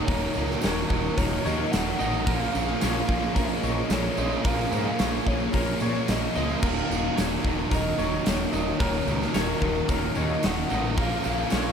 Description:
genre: rock, shoegaze and dream pop.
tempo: 110 BPM.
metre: 4/4.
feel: straight.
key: Eb minor.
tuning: A4 = 442 Hz.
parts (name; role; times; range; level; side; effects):
pure sine lead; melody; 0.0-11.7 s; Bb4 to Gb5; -32 LUFS; equal; chorus, tape echo.
warm analog pad; sustained chords; 0.0-11.7 s; Eb3 to Ab4; -36 LUFS; left 2 dB; none.
twangy electric guitar; arpeggios; 0.0-11.7 s; Bb4 to Eb5; -36 LUFS; left 2 dB; analog chorus, tape echo.
crunchy overdriven guitar; riff; 0.0-11.7 s; Eb2 to F4; -31 LUFS; right 10 dB; reverse reverb.
distorted electric guitar; riff; 0.0-11.7 s; Eb2 to Bb3; -32 LUFS; right 1 dB; overdrive.
fuzz guitar; riff; 0.0-11.7 s; Eb2 to Bb3; -32 LUFS; left 10 dB; distortion, ensemble chorus.
woody fretless electric bass; bass; 0.1-11.7 s; Eb1 to Bb2; -31 LUFS; equal; analog chorus.
big rock drum kit; drums; 0.1-11.6 s; crash cymbal, hi-hat, kick drum, snare drum; -29 LUFS; equal; none.
tambourine; percussion; 0.1-11.7 s; none; -45 LUFS; right 13 dB; none.
room: light reverb, small room ambience.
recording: none.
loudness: -23 LUFS.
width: side -7 dB against mid.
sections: 0.0-11.7 A section.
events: none.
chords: 0.0 Ebm7; 2.3 Bbm7; 6.6 Ebm7; 11.0 Bbm7.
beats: | 0.08 0.63 1.18 1.72 | 2.27 2.82 3.36 3.91 | 4.46 5.00 5.54 6.09 | 6.63 7.17 7.72 8.26 | 8.80 9.35 9.89 10.43 | 10.97 11.52.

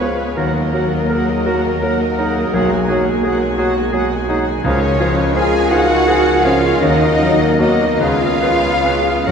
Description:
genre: classical.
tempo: 46-58 BPM (dotted quarters).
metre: 12/8.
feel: rubato.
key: unclear.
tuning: A4 = 439 Hz.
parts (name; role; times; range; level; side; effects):
clear grand piano; melody; 0.0-9.3 s; B1 to C#5; -18 LUFS; left 1 dB; none.
warm symphonic violin section; melody; 0.0-9.3 s; A#4 to G#5; -24 LUFS; left 3 dB; none.
concert flute; second line; 0.0-9.3 s; A#4 to G#5; -25 LUFS; equal; none.
mellow clarinet; second line; 0.0-9.3 s; F#4 to A#4; -24 LUFS; equal; none.
warm oboe; second line; 0.0-9.3 s; G#4 to C#5; -27 LUFS; right 1 dB; none.
warm symphonic violin section; second line; 0.0-9.3 s; A#4 to G#5; -27 LUFS; left 1 dB; none.
dark bassoon; accompaniment; 0.0-9.3 s; E#3 to G#3; -26 LUFS; right 1 dB; none.
rich symphonic viola section; accompaniment; 0.0-9.3 s; F#4 to G#5; -25 LUFS; right 2 dB; none.
dark French horn section; sustained chords; 0.0-9.3 s; F#3 to E#4; -25 LUFS; left 3 dB; none.
mellow trombone section; sustained chords; 0.0-9.3 s; C#3 to B3; -26 LUFS; right 4 dB; none.
rich symphonic cello section; bass; 0.0-9.3 s; A#3 to G#4; -21 LUFS; right 2 dB; none.
rich symphonic double bass section; bass; 0.0-9.3 s; B1 to F#2; -26 LUFS; right 2 dB; none.
timpani; percussion; 4.6-9.3 s; F#2 to C#3; -30 LUFS; equal; none.
room: wet church reverb, RT60 3.8 s.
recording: minimal, uncompressed stereo recording.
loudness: -13 LUFS.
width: side -6 dB against mid.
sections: 0.0-9.3 A section.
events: none.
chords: 0.4 D#m; 2.6 G#m7/B; 4.7 C#; 6.8 D#m; 8.0 C#7.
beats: | 0.38 1.47 2.55 3.60 | 4.65 5.72 6.83 8.02 | 9.28.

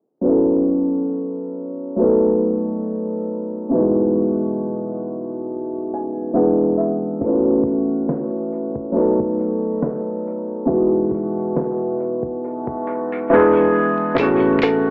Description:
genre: lo-fi hip hop.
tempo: 69 BPM.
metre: 4/4.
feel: swing 56% on 16ths.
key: E major.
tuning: A4 = 440 Hz.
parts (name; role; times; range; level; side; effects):
felt-muted upright piano; accompaniment; 0.2-14.9 s; B2 to G#5; -20 LUFS; equal; low-pass filter.
lo-fi sampler-style drum kit; drums; 7.2-14.8 s; hi-hat, kick drum, snare drum; -30 LUFS; equal; overdrive.
kalimba; melody; 14.2-14.9 s; G#4 to A4; -22 LUFS; equal; low-pass filter.
vintage muted fingered electric bass; bass; 14.2-14.9 s; A1; -34 LUFS; equal; none.
room: moderate spring reverb, RT60 2.3 s.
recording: vinyl crackle, low-pass filter, AM radio sound.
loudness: -20 LUFS.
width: mono.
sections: 0.3-14.2 A section.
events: filter sweep 0.3-14.2; felt piano fill 5.5-7.2; silent gap 13.3-14.2.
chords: 0.3 A69; 2.0 B7; 3.7 Emaj9/B; 6.3 E7; 7.2 A69; 9.0 B7; 10.7 Emaj9/B; 13.3 E7; 14.2 A69.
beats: | 0.26 1.13 2.00 2.87 | 3.73 4.61 5.47 6.34 | 7.21 8.08 8.95 9.82 | 10.69 11.56 12.43 13.30 | 14.17.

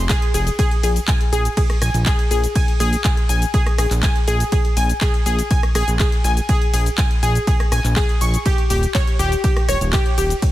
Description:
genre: progressive house.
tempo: 122 BPM.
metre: 4/4.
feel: straight.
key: Bb dorian.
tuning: A4 = 439 Hz.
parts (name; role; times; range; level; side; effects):
fat analog bass; bass; 0.0-10.3 s; Eb1 to Bb1; -19 LUFS; equal; tube saturation, sidechain pumping.
analog pluck; arpeggios; 0.1-10.2 s; G4 to Db6; -22 LUFS; left 1 dB; chorus, sidechain pumping, tape echo.
electronic kick drum; drums; 0.1-10.5 s; none; -18 LUFS; equal; none.
house drum kit; drums; 0.1-10.5 s; handclaps, hi-hat, ride cymbal, rim click, shaker; -26 LUFS; left 1 dB; none.
room: little or no reverb.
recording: dense, heavily limited modern master.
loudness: -15 LUFS.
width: side -15 dB against mid.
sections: 0.0-10.5 A section.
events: none.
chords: 0.0 Fm; 0.6 Bb7(no3); 8.5 Eb.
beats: 0.10 | 0.59 1.08 1.57 2.06 | 2.56 3.05 3.54 4.03 | 4.52 5.01 5.51 6.00 | 6.49 6.98 7.47 7.97 | 8.46 8.95 9.44 9.93 | 10.43.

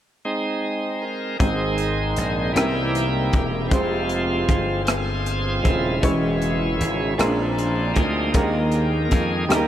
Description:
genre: slow gospel.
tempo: 52 BPM (dotted quarters).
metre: 6/8.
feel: straight.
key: Ab major.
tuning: A4 = 440 Hz.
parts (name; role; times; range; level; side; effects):
bright tonewheel organ; sustained chords; 0.3-9.7 s; Db3 to Bb4; -24 LUFS; right 1 dB; slow rotary speaker, overdrive.
clear baby grand piano; accompaniment; 1.4-9.7 s; Ab2 to Db5; -25 LUFS; equal; none.
glassy slap bass; bass; 1.4-9.7 s; Eb1 to F2; -25 LUFS; equal; none.
crisp fusion drum kit; drums; 1.4-9.7 s; hi-hat, kick drum, rim click; -24 LUFS; equal; none.
room: moderate huge ambient reverb, RT60 7.7 s.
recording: dreamy mix soaked in reverb.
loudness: -19 LUFS.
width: side -11 dB against mid.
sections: 0.0-1.4 A section; 1.4-9.7 B section.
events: tonewheel organ solo 1.4-9.7.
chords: 0.0 Ab; 2.6 C7; 3.7 Fm; 6.0 Dbm/Fb; 7.2 Bb7; 8.3 Ebsus4.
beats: 0.25 | 1.41 2.57 | 3.72 4.88 | 6.04 7.19 | 8.35 9.50.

